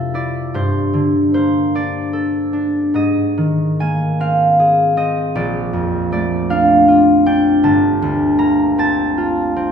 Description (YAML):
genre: classical, solo harp piece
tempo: 52 BPM (dotted quarters)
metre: 6/8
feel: rubato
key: unclear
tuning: A4 = 440 Hz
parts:
  - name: concert harp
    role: solo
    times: 0.0-9.7 s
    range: G1 to Bb5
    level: -13 LUFS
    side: equal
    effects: none
room: wet recital hall reverb, RT60 1.7 s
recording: recorded in a church or concert hall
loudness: -13 LUFS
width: side -7 dB against mid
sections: 0.0-9.7 A section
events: none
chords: 0.0 Fmaj9; 0.5 Gm9; 2.9 Abadd9; 5.4 Bbmaj7; 7.6 Gm11